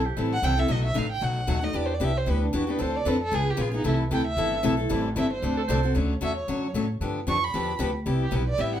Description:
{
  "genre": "acoustic string swing (jazz manouche)",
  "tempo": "228 BPM",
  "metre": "4/4",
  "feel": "swing 56% on 8ths",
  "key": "unclear",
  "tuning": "A4 = 438 Hz",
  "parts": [
    { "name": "breathy soprano saxophone", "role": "second line", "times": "0.0-0.2, 5.6-5.9 s", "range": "G4 to C5", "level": "-31 LUFS", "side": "right 5 dB", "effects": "none" },
    { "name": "upright bass", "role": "bass", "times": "0.0-8.8 s", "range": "G1 to A2", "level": "-28 LUFS", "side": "right 1 dB", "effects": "none" },
    { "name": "picked steel-string acoustic guitar", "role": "accompaniment", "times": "0.2-8.8 s", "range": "B2 to A4", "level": "-27 LUFS", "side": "left 2 dB", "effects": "none" },
    { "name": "warm violin", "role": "melody", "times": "0.3-8.8 s", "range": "D4 to C#6", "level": "-29 LUFS", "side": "right 2 dB", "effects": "plate reverb" }
  ],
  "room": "wet studio ambience, RT60 0.5 s",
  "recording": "heard from further back in the room",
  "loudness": "-23 LUFS",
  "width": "side -10 dB against mid",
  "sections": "0.0-5.9 A section; 5.9-8.8 A section",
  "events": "violin solo 0.0-8.8",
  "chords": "0.0 Am7; 0.7 B7; 1.7 Em7; 2.8 Dm7; 3.3 C#7; 3.8 C69; 4.9 Am7; 5.4 D7; 5.9 Dmaj7; 7.0 G7; 8.1 Cmaj7",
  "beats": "0.17 0.43 | 0.69 0.96 1.22 1.48 | 1.74 2.01 2.27 2.53 | 2.79 3.06 3.32 3.58 | 3.84 4.11 4.37 4.63 | 4.89 5.16 5.42 5.68 | 5.95 6.21 6.48 6.74 | 7.00 7.27 7.53 7.79 | 8.06 8.32 8.59"
}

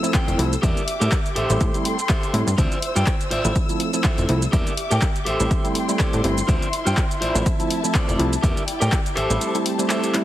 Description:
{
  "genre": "filtered disco house",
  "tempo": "123 BPM",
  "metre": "4/4",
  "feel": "swing 56% on 16ths",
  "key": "unclear",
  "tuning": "A4 = 440 Hz",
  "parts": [
    { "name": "overdriven reed electric piano", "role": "accompaniment", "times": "0.0-10.2 s", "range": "F3 to E4", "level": "-25 LUFS", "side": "right 1 dB", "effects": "phaser, sidechain pumping" },
    { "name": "muted studio string section", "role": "sustained chords", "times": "0.0-10.2 s", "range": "E4 to E6", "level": "-29 LUFS", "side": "left 2 dB", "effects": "sidechain pumping" },
    { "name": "electric guitar at the edge of break-up", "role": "riff", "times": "0.0-10.1 s", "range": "F4 to G5", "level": "-27 LUFS", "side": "right 1 dB", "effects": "spring reverb, sidechain pumping" },
    { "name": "punchy analog drum machine", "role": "drums", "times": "0.0-10.2 s", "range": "handclaps, hi-hat, shaker", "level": "-28 LUFS", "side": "equal", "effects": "overdrive, sidechain pumping on hats, sidechain pumping on perc" },
    { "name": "electronic kick drum", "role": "drums", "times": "0.1-9.0 s", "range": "none", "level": "-22 LUFS", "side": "equal", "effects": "overdrive" },
    { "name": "plucky analog bass", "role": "bass", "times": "0.3-9.4 s", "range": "F1 to A2", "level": "-22 LUFS", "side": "equal", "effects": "tube saturation, sidechain pumping" }
  ],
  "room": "light reverb, digital ambience",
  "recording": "heavily compressed radio sound",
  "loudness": "-18 LUFS",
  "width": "side -13 dB against mid",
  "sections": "0.0-10.2 A section",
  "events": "kick drops out 9.4-10.2",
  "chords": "0.0 Fmaj7; 0.6 Em7b5; 1.4 Am7; 2.6 Dm9; 3.6 Fmaj7; 4.5 Em7b5; 5.3 Am7; 6.5 Dm9; 7.5 Fmaj7; 8.4 Em7b5; 9.2 Am7",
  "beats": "0.14 | 0.63 1.12 1.61 2.09 | 2.58 3.07 3.56 4.04 | 4.53 5.02 5.51 6.00 | 6.48 6.97 7.46 7.95 | 8.44 8.92 9.41 9.90"
}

